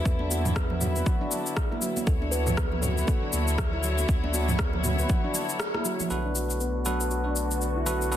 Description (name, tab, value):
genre	afro house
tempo	119 BPM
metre	4/4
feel	swing 59% on 16ths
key	B minor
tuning	A4 = 440 Hz
part	kalimba	melody	0.0-5.6 s	A4 to B4	-39 LUFS	left 1 dB	digital delay
part	warm chamber string section	sustained chords	0.0-8.2 s	D3 to C#5	-33 LUFS	left 3 dB	vintage 12-bit sampler grit, sidechain pumping, low-pass filter
part	handpan	arpeggios	0.1-8.2 s	F#3 to B4	-32 LUFS	equal	sidechain pumping, low-pass filter, digital delay
part	warm sub bass	bass	0.1-8.2 s	B1 to E2	-29 LUFS	equal	sidechain pumping
part	deep house drum kit	drums	0.1-8.2 s	rim click, shaker, toms	-31 LUFS	left 1 dB	overdrive
part	electronic kick drum	drums	0.1-5.2 s	none	-26 LUFS	equal	overdrive
part	congas	percussion	0.2-6.1 s	none	-35 LUFS	right 5 dB	none
part	bell-like tine electric piano	stabs	6.1-8.2 s	B3 to B4	-31 LUFS	right 2 dB	sidechain pumping, digital delay
room	light reverb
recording	dense, heavily limited modern master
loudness	-24 LUFS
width	side -11 dB against mid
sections	0.0-6.1 A section; 6.1-8.2 B section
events	break 5.6-6.1; band accent 5.6; filter sweep on handpan 6.1-8.2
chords	0.0 E5; 2.1 Dmaj9; 6.1 Bm7